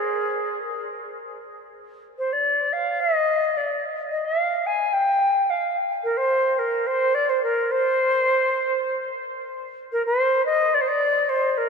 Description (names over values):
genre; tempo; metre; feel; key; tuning
turkish; free time; none; none; C makam ussak; A4 = 440 Hz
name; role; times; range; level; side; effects
silver concert flute; solo; 0.0-11.7 s; Ab4 to Ab5; -20 LUFS; equal; tape echo
room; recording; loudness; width
wet huge ambient reverb, RT60 4.8 s; dreamy mix soaked in reverb; -20 LUFS; side -5 dB against mid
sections
0.0-9.6 A section; 9.6-11.7 A section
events
none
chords
none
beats
free time